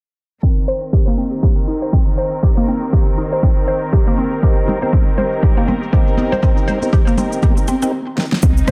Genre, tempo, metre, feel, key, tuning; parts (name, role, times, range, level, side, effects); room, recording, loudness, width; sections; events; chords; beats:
afro house; 120 BPM; 4/4; swing 58% on 16ths; C minor pentatonic; A4 = 440 Hz
clear studio string section; sustained chords; 0.4-8.7 s; C3 to Bb4; -28 LUFS; equal; sidechain pumping
mallet-like synth pluck; arpeggios; 0.4-8.7 s; Bb3 to C5; -24 LUFS; equal; chorus, phaser, sidechain pumping, tape echo
electronic kick drum; drums; 0.4-8.5 s; -17 LUFS; equal; overdrive
electronic shaker, snare drum and rim click; drums; 0.4-8.7 s; -23 LUFS; equal; overdrive, analog delay
mellow tonewheel organ; stabs; 4.4-7.9 s; C4 to Bb4; -26 LUFS; equal; overdrive, fast rotary speaker, sidechain pumping, analog delay
congas; percussion; 4.7-8.7 s; -26 LUFS; equal; analog delay
warm 808-style bass; bass; 8.4-8.7 s; C2; -17 LUFS; equal; sidechain pumping
little or no reverb; echo-heavy mix, low-pass filter; -16 LUFS; mono
0.4-8.4 A section
filter sweep on synth pluck 0.4-8.4; filter sweep 0.4-8.4; stop 7.9-8.4; drum fill 8.2
0.4 Cm7
| 0.43 0.93 1.43 1.93 | 2.43 2.93 3.43 3.93 | 4.43 4.93 5.43 5.93 | 6.43 6.93 7.43 7.93 | 8.43